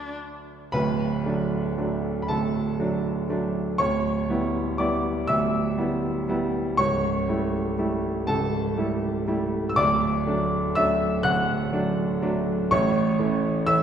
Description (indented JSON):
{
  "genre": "classical",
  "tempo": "40 BPM (dotted quarters)",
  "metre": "6/8",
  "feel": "uneven beats, rubato",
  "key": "D major",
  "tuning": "A4 = 436 Hz",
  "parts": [
    { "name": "warm concert grand piano", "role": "accompaniment", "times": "0.0-13.8 s", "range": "C#1 to F#6", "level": "-22 LUFS", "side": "right 1 dB", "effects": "none" }
  ],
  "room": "wet scoring stage reverb, RT60 1.9 s",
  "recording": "heard from further back in the room",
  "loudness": "-22 LUFS",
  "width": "side -8 dB against mid",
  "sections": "0.7-13.8 A section",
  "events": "none",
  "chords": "0.0 D; 3.8 Em7/D; 6.8 A7/C#; 9.8 D; 12.7 A"
}